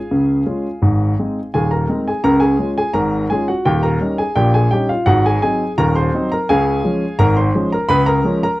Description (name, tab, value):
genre	ragtime piano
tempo	85 BPM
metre	2/4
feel	straight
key	Db major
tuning	A4 = 440 Hz
part	clear grand piano	solo	0.0-8.6 s	Eb1 to C6	-14 LUFS	equal	none
room	little or no reverb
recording	dry, close 1970s-style studio recording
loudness	-14 LUFS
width	side -18 dB against mid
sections	0.0-8.6 A section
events	none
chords	0.0 Db; 0.8 Ab; 2.2 Db; 3.7 Eb7; 5.1 Ab7; 6.5 Db; 7.9 Db7